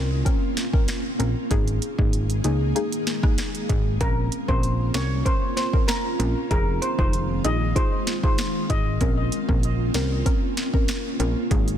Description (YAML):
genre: dancehall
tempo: 96 BPM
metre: 4/4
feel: straight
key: Bb minor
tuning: A4 = 440 Hz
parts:
  - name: soft round pluck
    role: accompaniment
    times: 0.0-11.6 s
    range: Bb3 to Bb4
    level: -30 LUFS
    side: left 3 dB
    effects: chorus, sidechain pumping
  - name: ethereal airy pad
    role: sustained chords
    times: 0.0-11.8 s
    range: Eb3 to Ab4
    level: -29 LUFS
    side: right 1 dB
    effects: ensemble chorus, built-in reverb, sidechain pumping
  - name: plucky analog bass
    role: bass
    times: 0.0-11.8 s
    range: F1 to Db2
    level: -24 LUFS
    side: equal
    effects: none
  - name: afro-pop drum kit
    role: drums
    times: 0.3-11.8 s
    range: finger snaps, hi-hat, kick drum, rim click, snare drum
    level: -23 LUFS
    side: equal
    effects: none
  - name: steel pan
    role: melody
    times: 4.0-8.8 s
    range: Bb4 to Eb5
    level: -29 LUFS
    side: left 2 dB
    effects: ping-pong delay
room: digital ambience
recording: dense, heavily limited modern master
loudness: -20 LUFS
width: side -10 dB against mid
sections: 0.0-11.8 A section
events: none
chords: 0.0 Bbmadd9; 1.5 Absus2; 4.0 Bbmadd9; 6.5 Fm7; 9.0 Bbmadd9